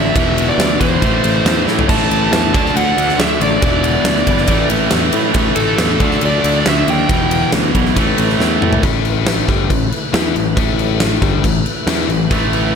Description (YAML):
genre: hard rock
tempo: 138 BPM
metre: 4/4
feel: straight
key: unclear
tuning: A4 = 437 Hz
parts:
  - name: bluesy overdriven lead guitar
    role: melody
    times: 0.0-7.5 s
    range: A4 to A5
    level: -20 LUFS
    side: right 1 dB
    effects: distortion, plate reverb, analog delay
  - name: tonewheel organ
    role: sustained chords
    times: 0.0-12.8 s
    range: A3 to G5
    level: -28 LUFS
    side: right 1 dB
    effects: none
  - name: biting overdriven guitar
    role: riff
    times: 0.0-12.8 s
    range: E2 to E4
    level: -19 LUFS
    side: left 14 dB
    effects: none
  - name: tight distorted guitar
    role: riff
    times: 0.0-8.8, 12.3-12.8 s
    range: E2 to D4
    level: -19 LUFS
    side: right 17 dB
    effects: distortion
  - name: modern bright picked electric bass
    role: bass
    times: 0.0-12.8 s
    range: E1 to A2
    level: -19 LUFS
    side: right 1 dB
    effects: none
  - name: huge arena drum kit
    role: drums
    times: 0.2-12.6 s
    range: crash cymbal, kick drum, ride cymbal, snare drum, toms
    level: -17 LUFS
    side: equal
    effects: none
room: light reverb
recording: none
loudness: -12 LUFS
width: side -6 dB against mid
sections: 0.0-8.8 A section; 8.8-12.8 B section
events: drum fill 1.7, 8.4-8.8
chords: 0.2 Em; 1.0 A5; 2.5 D; 3.6 Em; 4.5 A5; 6.0 D5; 7.1 Em; 8.0 A5